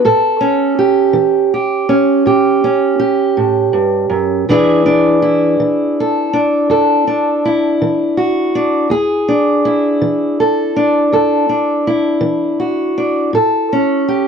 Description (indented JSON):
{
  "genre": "blues",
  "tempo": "54 BPM (dotted quarters)",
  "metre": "12/8",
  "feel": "straight",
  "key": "unclear",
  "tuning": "A4 = 440 Hz",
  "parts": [
    { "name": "fingerpicked steel-string acoustic guitar", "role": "solo", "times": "0.0-14.3 s", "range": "E2 to A4", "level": "-12 LUFS", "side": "right 1 dB", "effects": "none" }
  ],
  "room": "light reverb",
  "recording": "dry, close 1970s-style studio recording",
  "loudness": "-12 LUFS",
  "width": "side -6 dB against mid",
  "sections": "0.0-14.3 A section",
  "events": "none",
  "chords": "0.0 A7; 4.5 E7; 13.3 A7",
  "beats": "| 0.05 1.16 2.27 3.38 | 4.48 5.59 6.70 7.81 | 8.91 10.02 11.12 12.23 | 13.34"
}